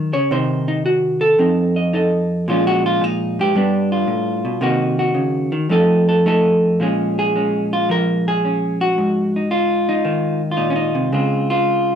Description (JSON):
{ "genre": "solo jazz", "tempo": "111 BPM", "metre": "4/4", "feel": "swing 69% on 8ths, rubato", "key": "Bb minor", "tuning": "A4 = 440 Hz", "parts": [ { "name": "vintage hollow-body jazz guitar", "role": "solo", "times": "0.0-12.0 s", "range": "F2 to Eb5", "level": "-15 LUFS", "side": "equal", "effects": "none" } ], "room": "light reverb", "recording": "dark, warm production", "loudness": "-15 LUFS", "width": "side -8 dB against mid", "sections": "0.0-6.8 A section; 6.8-12.0 B section", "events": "hollow-body jazz guitar solo 0.0-6.8", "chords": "0.3 Cdim7; 1.4 F7; 2.5 Bbm7; 3.5 G7; 4.6 Cm7b5; 5.7 F7; 6.8 Bbm7; 9.0 Ab7sus2; 11.1 Dbmaj7", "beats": "| 0.31 0.85 1.39 1.93 | 2.47 3.01 3.54 4.08 | 4.61 5.15 5.69 6.24 | 6.80 7.35 7.89 8.44 | 8.97 9.51 10.04 10.57 | 11.11 11.64" }